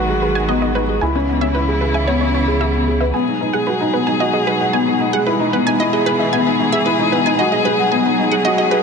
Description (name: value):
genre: piano and strings electronica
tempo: 113 BPM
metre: 4/4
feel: straight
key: unclear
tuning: A4 = 441 Hz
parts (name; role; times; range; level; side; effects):
- warm string quartet; sustained chords; 0.0-8.8 s; B2 to G#4; -20 LUFS; left 1 dB; none
- wide unison pluck; arpeggios; 0.0-8.8 s; B4 to G#5; -22 LUFS; right 2 dB; ping-pong delay
- felt-muted upright piano; riff; 0.0-8.8 s; B3 to F#5; -17 LUFS; left 1 dB; ping-pong delay
- round analog bass; bass; 0.0-3.1 s; G#1 to C#2; -21 LUFS; right 1 dB; none
room: moderate lush hall reverb, RT60 2.7 s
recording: high-pass filter, nothing above 10.8 kHz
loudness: -14 LUFS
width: side -5 dB against mid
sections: 0.0-3.1 A section; 3.1-8.8 B section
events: build-up 3.1-8.8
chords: 0.0 G#m7; 1.0 C#m7; 3.1 B6; 5.3 Emaj7; 7.4 G#m7